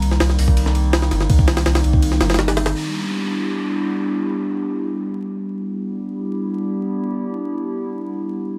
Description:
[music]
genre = drum and bass, jungle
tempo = 165 BPM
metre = 4/4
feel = straight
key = unclear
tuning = A4 = 440 Hz
[part]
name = warbly tape-like pad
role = sustained chords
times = 0.0-8.5 s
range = Eb3 to G4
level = -25 LUFS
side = equal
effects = chorus, built-in reverb, vintage 12-bit sampler grit
[part]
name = soft dub sub bass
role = bass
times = 0.0-2.7 s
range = G1 to C2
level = -20 LUFS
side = equal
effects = none
[part]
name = jungle sampler-style drum kit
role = drums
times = 0.0-2.7 s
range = hi-hat, kick drum, ride cymbal, snare drum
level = -20 LUFS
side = equal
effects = none
[part]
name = downlifter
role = sound effects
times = 2.8-5.7 s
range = none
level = -35 LUFS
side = equal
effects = none
[sound]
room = moderate spring reverb, RT60 1.2 s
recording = vinyl crackle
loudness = -20 LUFS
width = mono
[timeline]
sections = 0.0-2.8 A section; 2.8-8.6 B section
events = none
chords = 0.0 Cm7; 2.8 Em7

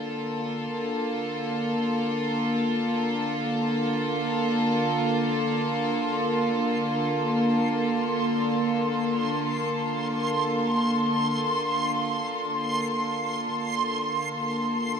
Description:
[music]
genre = ambient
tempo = free time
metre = none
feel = none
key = Bb major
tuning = A4 = 442 Hz
[part]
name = rich studio string section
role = sustained chords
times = 0.0-15.0 s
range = D3 to A4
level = -24 LUFS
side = equal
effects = none
[part]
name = backwards swelling texture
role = texture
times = 5.7-15.0 s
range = C6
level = -29 LUFS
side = right 1 dB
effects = built-in reverb, shimmer reverb
[sound]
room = wet huge ambient reverb, RT60 7.4 s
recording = none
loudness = -24 LUFS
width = side -7 dB against mid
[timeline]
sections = 0.0-4.6 A section; 4.6-15.0 B section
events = none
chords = 0.0 Bbmaj7

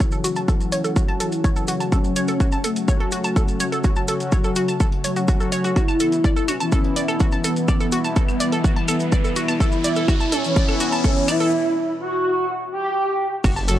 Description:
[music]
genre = melodic techno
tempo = 125 BPM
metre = 4/4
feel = straight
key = unclear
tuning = A4 = 438 Hz
[part]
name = expressive portamento lead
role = melody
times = 0.0-13.3 s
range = E3 to G4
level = -23 LUFS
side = equal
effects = ensemble chorus, sidechain pumping, analog delay
[part]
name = evolving wavetable pad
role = sustained chords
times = 0.0-13.8 s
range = B2 to C#5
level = -31 LUFS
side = left 1 dB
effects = phaser, built-in reverb, sidechain pumping
[part]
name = analog pluck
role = arpeggios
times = 0.0-13.7 s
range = F#4 to A5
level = -27 LUFS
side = right 1 dB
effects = chorus, cassette tape, sidechain pumping, analog delay
[part]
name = brassy analog pad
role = stabs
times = 0.0-13.8 s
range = E3 to F#4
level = -27 LUFS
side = left 3 dB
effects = chorus, cassette tape, sidechain pumping, analog delay
[part]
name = electronic kick drum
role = drums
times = 0.0-13.5 s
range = none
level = -19 LUFS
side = equal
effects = overdrive
[part]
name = punchy analog drum machine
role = drums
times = 0.0-13.8 s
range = claves, crash cymbal, hi-hat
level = -30 LUFS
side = left 1 dB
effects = sidechain pumping on perc, high-pass filter on perc, sidechain pumping on hats, high-pass filter on hats, sidechain pumping on cymbals, high-pass filter on cymbals
[part]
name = maracas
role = percussion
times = 0.0-13.8 s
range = none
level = -33 LUFS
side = right 2 dB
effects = none
[part]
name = riser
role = sound effects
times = 7.8-11.5 s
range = none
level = -32 LUFS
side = left 1 dB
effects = none
[part]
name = dark detuned saw bass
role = bass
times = 13.4-13.8 s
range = F#1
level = -21 LUFS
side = equal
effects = sidechain pumping
[part]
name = electronic shaker and snare drum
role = drums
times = 13.4-13.8 s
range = none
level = -44 LUFS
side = right 1 dB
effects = none
[sound]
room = light reverb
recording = dry, gritty hardware recording, transformer saturation, cassette tape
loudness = -18 LUFS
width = side -12 dB against mid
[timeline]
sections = 0.0-13.4 A section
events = build-up 0.0-13.4; filter sweep on synth arpeggio sound 0.0-13.4; filter sweep on analog synth lead 0.0-13.4; filter sweep on analog synth pad 0.0-13.4; riser 7.8-11.5; break 11.5-13.4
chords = 0.0 F#m; 5.8 Em

